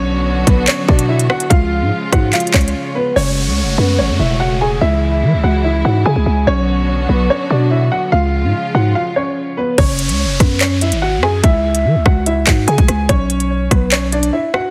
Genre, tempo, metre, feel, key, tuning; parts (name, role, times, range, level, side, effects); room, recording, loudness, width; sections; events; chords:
hip hop, drill; 145 BPM; 4/4; half-time; F# minor; A4 = 440 Hz
dark baby grand piano; melody; 0.0-14.7 s; B3 to G#5; -20 LUFS; equal; low-pass filter
rich symphonic string section; sustained chords; 0.0-9.8 s; C#3 to F#4; -26 LUFS; equal
growling 808-style bass; bass; 0.0-14.3 s; E1 to E3; -18 LUFS; equal
drill drum kit; drums; 0.5-2.7, 9.8-14.6 s; handclaps, hi-hat, kick drum, rim click; -17 LUFS; equal
downlifter; sound effects; 3.2-6.5, 9.8-13.1 s; -27 LUFS; equal
light reverb, digital ambience; heavily compressed radio sound, multiband compression; -15 LUFS; mono
0.0-3.2 A section; 3.2-9.8 B section; 9.8-14.7 C section
break 2.7-3.2, 9.0-9.8
0.0 Bm; 1.5 C#; 3.2 F#madd9; 4.8 C#m; 6.5 Bm; 8.1 C#; 9.8 F#sus2; 11.4 C#m; 13.1 N.C.